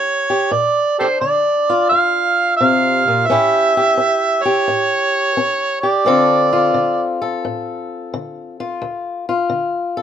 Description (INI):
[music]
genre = acoustic country blues, solo or duo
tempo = 87 BPM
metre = 4/4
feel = swing 68% on 8ths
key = D minor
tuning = A4 = 440 Hz
[part]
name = overdriven harmonica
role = melody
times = 0.0-7.2 s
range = G4 to F5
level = -15 LUFS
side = right 3 dB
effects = none
[part]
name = fingerpicked swing-style acoustic guitar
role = accompaniment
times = 0.0-10.0 s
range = D2 to A4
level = -19 LUFS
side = left 3 dB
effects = none
[sound]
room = light reverb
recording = minimal, uncompressed stereo recording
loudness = -14 LUFS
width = side -9 dB against mid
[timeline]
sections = 0.0-10.0 A section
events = none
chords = 0.0 A7 (rootless); 0.5 Bb; 3.3 A7; 6.1 Dm7